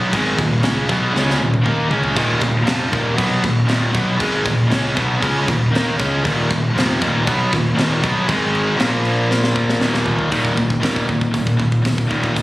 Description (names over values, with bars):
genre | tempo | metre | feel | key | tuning
heavy metal | 118 BPM | 4/4 | straight | Eb minor | A4 = 440 Hz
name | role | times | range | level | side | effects
heavy high-gain guitar | riff | 0.0-12.4 s | Eb2 to Eb4 | -20 LUFS | left 2 dB | distortion
heavy high-gain guitar | riff | 0.0-12.4 s | Eb2 to Eb4 | -20 LUFS | right 2 dB | distortion
fuzz fingered electric bass | bass | 0.0-12.4 s | Eb1 to Eb2 | -22 LUFS | equal | overdrive
tight metal drum kit | drums | 0.1-12.4 s | crash cymbal, hi-hat, kick drum, snare drum, toms | -22 LUFS | equal | none
room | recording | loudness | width
studio ambience | recorded on a phone in the room, studio reverb, compression | -15 LUFS | side -18 dB against mid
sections
0.0-10.3 A section; 10.3-12.4 B section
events
drum fill 1.1-2.2, 9.3-10.3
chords
0.0 Ebm; 8.3 Ab5; 8.8 Bb5; 9.8 Eb5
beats
| 0.11 0.62 1.13 1.64 | 2.15 2.66 3.17 3.68 | 4.19 4.70 5.21 5.72 | 6.23 6.74 7.25 7.76 | 8.28 8.79 9.30 9.81 | 10.32 10.83 11.34 11.86 | 12.37